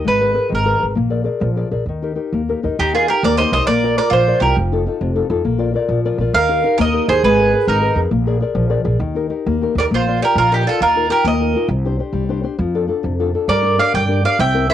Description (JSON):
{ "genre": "italian folk, Italian serenade", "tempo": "134 BPM (dotted quarters)", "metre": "6/8", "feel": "rubato", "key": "Eb major, Bb major from 9.9 s", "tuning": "A4 = 441 Hz", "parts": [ { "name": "bowl-back mandolin", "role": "melody", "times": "0.0-14.7 s", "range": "G4 to G5", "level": "-16 LUFS", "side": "right 1 dB", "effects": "none" }, { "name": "nylon-string guitar", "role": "accompaniment", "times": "0.0-14.7 s", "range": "C3 to Eb5", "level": "-20 LUFS", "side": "left 6 dB", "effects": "cassette tape" }, { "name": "upright bass", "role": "bass", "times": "0.1-14.7 s", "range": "F1 to G2", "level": "-20 LUFS", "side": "right 1 dB", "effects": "tube saturation" }, { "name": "bowl-back mandolin", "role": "second line", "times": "2.8-14.7 s", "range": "Eb4 to E5", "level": "-20 LUFS", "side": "right 9 dB", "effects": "cassette tape" } ], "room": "moderate studio ambience, RT60 0.5 s", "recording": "home recording on cassette", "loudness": "-14 LUFS", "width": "side -10 dB against mid", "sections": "0.0-2.8 A section; 2.8-9.9 A section; 9.9-14.7 B section", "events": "nylon-string guitar fill 2.3-2.8, 5.9-6.3", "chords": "0.1 Abmadd9; 1.0 Bb7; 1.9 Eb; 3.7 Bb; 4.6 F7; 5.4 Bb; 6.3 Eb; 7.2 Abmadd9; 8.1 Bb7; 9.0 Eb; 9.9 Bb; 10.8 Ebsus2; 11.7 Csus2; 12.6 F6; 13.5 Gm" }